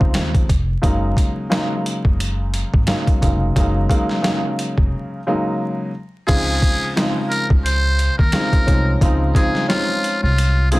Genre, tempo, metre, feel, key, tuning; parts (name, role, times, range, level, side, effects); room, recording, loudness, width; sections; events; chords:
hip hop, boom-bap hip-hop; 88 BPM; 4/4; swing 56% on 16ths; Db major; A4 = 438 Hz
dark baby grand piano; accompaniment; 0.0-10.8 s; Db3 to Eb4; -22 LUFS; equal; cassette tape
upright bass; bass; 0.0-10.8 s; F1 to Eb2; -19 LUFS; equal
boom bap sampler-style drum kit; drums; 0.0-10.8 s; crash cymbal, hi-hat, kick drum, snare drum; -18 LUFS; equal
trumpet with metal mute; melody; 6.3-10.8 s; F4 to C5; -22 LUFS; equal; tape echo
little or no reverb; dense, heavily limited modern master, vinyl crackle; -16 LUFS; side -20 dB against mid
0.0-6.3 A section; 6.3-10.8 B section
break 4.9-6.3
0.0 Dbmaj7; 0.8 Gb6; 6.3 Dbmaj7